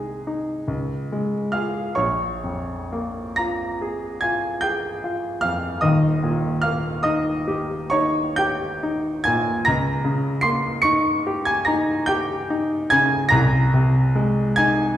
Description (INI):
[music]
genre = classical, romantic nocturne for solo piano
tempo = 48 BPM (dotted quarters)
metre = 9/8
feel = uneven beats, rubato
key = unclear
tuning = A4 = 439 Hz
[part]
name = clear grand piano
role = solo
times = 0.0-15.0 s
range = Eb1 to Db7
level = -19 LUFS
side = equal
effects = none
[sound]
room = wet recital hall reverb, RT60 1.7 s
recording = heard from further back in the room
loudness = -19 LUFS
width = side -11 dB against mid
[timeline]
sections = 0.0-15.0 A section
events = none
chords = 0.0 Ab/C; 0.7 Db; 2.0 Bbm7; 5.8 Eb; 9.7 Eb7/Db; 13.3 Ab/C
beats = 0.69 | 1.98 3.39 4.64 | 5.84 7.05 8.39 | 9.67 10.86 12.11 | 13.34 14.60